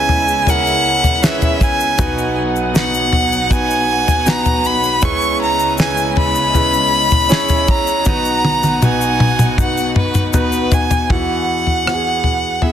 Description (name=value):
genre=pop ballad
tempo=79 BPM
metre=4/4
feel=straight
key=B major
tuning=A4 = 440 Hz
part: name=warm violin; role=melody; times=0.0-12.7 s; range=B4 to C#6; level=-16 LUFS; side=equal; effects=tape echo
part: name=clear concert grand piano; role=accompaniment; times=0.0-12.7 s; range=B1 to C#5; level=-20 LUFS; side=right 1 dB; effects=none
part: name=warm studio string section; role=sustained chords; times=0.0-11.1 s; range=B2 to F#5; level=-25 LUFS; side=left 1 dB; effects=none
part: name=damped 70s drum kit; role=drums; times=0.1-12.7 s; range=kick drum, rim click, snare drum, toms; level=-16 LUFS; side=left 1 dB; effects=none
part: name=egg shaker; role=percussion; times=0.3-11.1 s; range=none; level=-28 LUFS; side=left 11 dB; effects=none
room=light reverb, small room ambience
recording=dense, heavily limited modern master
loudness=-13 LUFS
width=side -10 dB against mid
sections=0.0-11.1 A section; 11.1-12.7 B section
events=drum fill 8.1-11.1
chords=0.0 C#m7; 2.0 B; 5.0 C#m7; 8.1 B; 11.1 Esus2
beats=0.47 1.23 | 1.99 2.75 3.51 4.26 | 5.03 5.78 6.54 7.30 | 8.06 8.82 9.58 10.34 | 11.10 11.86 12.62